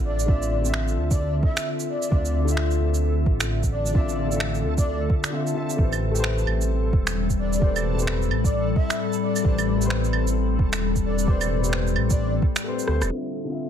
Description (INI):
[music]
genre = future garage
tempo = 131 BPM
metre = 4/4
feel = swing 61% on 16ths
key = A minor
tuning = A4 = 438 Hz
[part]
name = breathy flute-like synth lead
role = melody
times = 0.0-12.3 s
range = D5 to E5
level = -32 LUFS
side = left 1 dB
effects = ensemble chorus, cassette tape, ping-pong delay
[part]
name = dark upright piano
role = accompaniment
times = 0.0-13.7 s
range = D3 to E5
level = -31 LUFS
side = left 5 dB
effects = sidechain pumping, low-pass filter, tape echo
[part]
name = warbly tape-like pad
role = sustained chords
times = 0.0-13.7 s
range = A2 to B5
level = -28 LUFS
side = left 4 dB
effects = chorus, built-in reverb, sidechain pumping
[part]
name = dark detuned saw bass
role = bass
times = 0.0-13.1 s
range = E1 to D2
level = -24 LUFS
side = right 1 dB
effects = sidechain pumping
[part]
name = backwards swelling texture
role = texture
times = 0.0-13.7 s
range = A4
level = -37 LUFS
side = right 1 dB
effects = built-in reverb
[part]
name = electronic shaker, finger snaps, claves and rim click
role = drums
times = 0.2-13.1 s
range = none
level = -29 LUFS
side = right 3 dB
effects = none
[part]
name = electronic kick drum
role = drums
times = 0.3-12.5 s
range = none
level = -21 LUFS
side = right 1 dB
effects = none
[sound]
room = light reverb, digital ambience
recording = low-pass filter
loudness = -21 LUFS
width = side -9 dB against mid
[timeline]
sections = 0.0-13.1 A section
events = drum fill 12.9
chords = 0.0 Dm9; 5.8 Am9; 13.1 Dm9